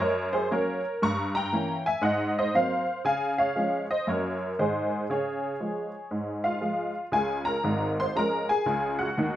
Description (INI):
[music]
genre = jazz, stride piano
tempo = 118 BPM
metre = 4/4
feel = swing 65% on 8ths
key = Db major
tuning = A4 = 440 Hz
[part]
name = honky-tonk upright piano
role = solo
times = 0.0-9.4 s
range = Ab1 to Db6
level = -25 LUFS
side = equal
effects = none
[sound]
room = moderate large studio reverb, RT60 0.8 s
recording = band playing live in one room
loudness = -25 LUFS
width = side -12 dB against mid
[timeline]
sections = 0.0-7.1 A section; 7.1-9.4 B section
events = none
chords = 0.0 Gb; 1.0 Gdim7; 2.0 Ab13; 3.1 Db; 4.1 Gb; 4.6 Ab; 5.1 Db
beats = 0.00 0.51 | 1.01 1.52 2.03 2.54 | 3.05 3.56 4.07 4.58 | 5.09 5.60 6.11 6.62 | 7.13 7.64 8.15 8.66 | 9.16